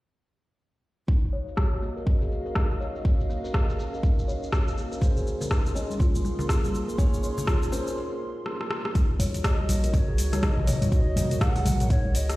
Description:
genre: afro house.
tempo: 122 BPM.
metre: 4/4.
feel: swing 59% on 16ths.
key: Eb dorian.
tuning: A4 = 441 Hz.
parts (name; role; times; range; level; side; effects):
dark analog pad; sustained chords; 1.8-12.4 s; Bb3 to C6; -37 LUFS; right 1 dB; chorus, sidechain pumping.
kalimba; arpeggios; 1.1-12.3 s; Bb3 to Db5; -35 LUFS; equal; sidechain pumping, low-pass filter, tape echo.
deep house drum kit; drums; 1.1-12.4 s; hi-hat, rim click, shaker, toms; -31 LUFS; equal; overdrive, low-pass filter on perc, low-pass filter on snare, low-pass filter on hats, low-pass filter on toms, low-pass filter on room.
electronic kick drum; drums; 1.1-12.0 s; none; -23 LUFS; equal; none.
felt-muted upright piano; stabs; 5.0-8.0 s; Db4 to Eb5; -36 LUFS; left 1 dB; vintage 12-bit sampler grit, sidechain pumping, tape echo.
congas; percussion; 5.0-12.1 s; none; -33 LUFS; left 1 dB; none.
warm 808-style bass; bass; 9.2-12.4 s; Bb1 to Eb2; -25 LUFS; equal; sidechain pumping.
bright bass bansuri; melody; 9.4-12.4 s; Db5 to Gb5; -35 LUFS; left 1 dB; tape echo.
room: light reverb, studio ambience.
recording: played on a big sound system in a bare room, large studio reverb.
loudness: -23 LUFS.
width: side -18 dB against mid.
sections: 1.1-9.0 A section; 9.0-12.4 B section.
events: filter sweep on drum 1.1-9.0; filter sweep on kalimba 1.1-9.0; break 8.0-9.0; drum fill 8.5-9.0.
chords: 1.1 Ebm9; 5.0 Bbm9; 9.0 Ebm7.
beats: | 1.08 1.57 2.07 2.56 | 3.05 3.54 4.03 4.53 | 5.02 5.51 6.00 6.49 | 6.99 7.48 7.97 8.46 | 8.95 9.44 9.94 10.43 | 10.92 11.41 11.90.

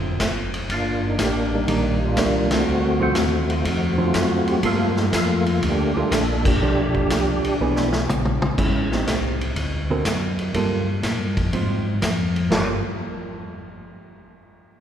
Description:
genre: soul jazz organ trio.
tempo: 122 BPM.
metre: 4/4.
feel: swing 68% on 8ths.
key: G minor.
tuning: A4 = 439 Hz.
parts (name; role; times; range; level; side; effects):
hollow-body jazz guitar; accompaniment; 0.0-12.8 s; D3 to Bb4; -27 LUFS; right 2 dB; none.
mellow tonewheel organ; bass; 0.0-12.8 s; E#1 to Bb2; -25 LUFS; left 1 dB; chorus vibrato, slow rotary speaker.
vintage drum kit; drums; 0.2-12.7 s; china cymbal, crash cymbal, hi-hat, kick drum, ride cymbal, snare drum, toms; -24 LUFS; equal; none.
percussive tonewheel organ; melody; 0.7-7.9 s; G3 to A4; -22 LUFS; equal; slow rotary speaker, chorus vibrato.
room: wet church reverb, RT60 3.5 s.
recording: recorded in a church or concert hall.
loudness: -19 LUFS.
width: side -9 dB against mid.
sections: 0.0-8.6 A section; 8.6-12.5 B section; 12.5-14.5 C section.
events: band accent 2.4, 6.4; drum fill 7.6-8.6.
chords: 0.0 D7#9; 0.7 Ebmaj7; 2.7 D7#9; 4.6 Gm9; 6.6 Bm7b5; 7.6 E7; 8.6 Am7b5; 9.6 D7b13; 10.5 Gm9; 11.5 Ab6; 12.5 Gm9.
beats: 0.21 | 0.70 1.19 1.68 2.18 | 2.67 3.16 3.65 4.15 | 4.64 5.13 5.62 6.12 | 6.61 7.10 7.59 8.08 | 8.57 9.07 9.56 10.05 | 10.54 11.04 11.53 12.02 | 12.51.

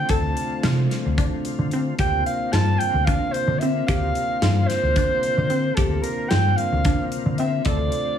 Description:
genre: progressive instrumental, band music in an uneven meter.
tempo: 222 BPM (eighths).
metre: 7/8.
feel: straight.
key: unclear.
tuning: A4 = 440 Hz.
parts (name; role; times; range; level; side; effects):
breathy soprano saxophone; melody; 0.0-8.2 s; A4 to A5; -24 LUFS; right 2 dB; none.
tonewheel organ; accompaniment; 0.0-8.2 s; D3 to F4; -29 LUFS; left 4 dB; chorus vibrato, slow rotary speaker.
resonant blip pluck; arpeggios; 0.0-8.1 s; C4 to A4; -29 LUFS; equal; phaser.
hollow-body short-scale picked electric bass; bass; 0.0-7.9 s; D2 to D3; -22 LUFS; equal; none.
big rock drum kit; drums; 0.1-8.0 s; hi-hat, kick drum, snare drum; -26 LUFS; left 1 dB; none.
room: moderate studio reverb, RT60 0.5 s.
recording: heavily compressed radio sound, studio reverb.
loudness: -19 LUFS.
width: side -9 dB against mid.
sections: 0.0-8.2 A section.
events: none.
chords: 0.0 Dm7; 2.0 Bbsus2/D; 7.7 Dm7.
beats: | 0.10 0.37 0.64 0.91 1.18 1.45 1.72 | 1.99 2.26 2.53 2.80 3.07 3.34 3.61 | 3.88 4.15 4.42 4.69 4.96 5.23 5.50 | 5.77 6.04 6.31 6.58 6.85 7.12 7.39 | 7.66 7.93.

